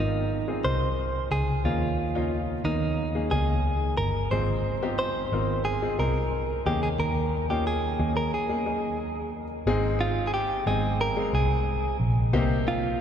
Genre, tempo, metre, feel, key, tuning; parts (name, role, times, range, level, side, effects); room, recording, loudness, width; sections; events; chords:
piano-driven pop; 90 BPM; 4/4; straight; Ab major; A4 = 440 Hz
direct-recorded clean electric guitar; melody; 0.0-13.0 s; Eb4 to C5; -29 LUFS; right 1 dB
clear upright piano; accompaniment; 0.0-13.0 s; Ab2 to G5; -30 LUFS; left 3 dB
vintage muted picked electric bass; bass; 0.0-13.0 s; G1 to Eb2; -27 LUFS; right 1 dB
wet cathedral reverb, RT60 5.3 s; recorded in a church or concert hall, nothing above 10.9 kHz; -24 LUFS; side -8 dB against mid
0.0-9.7 A section; 9.7-13.0 B section
break 8.3-9.7
0.0 Ab6; 1.6 Eb7sus4; 4.3 Ab6; 6.7 Eb7sus4; 9.7 Ab; 12.3 Cm7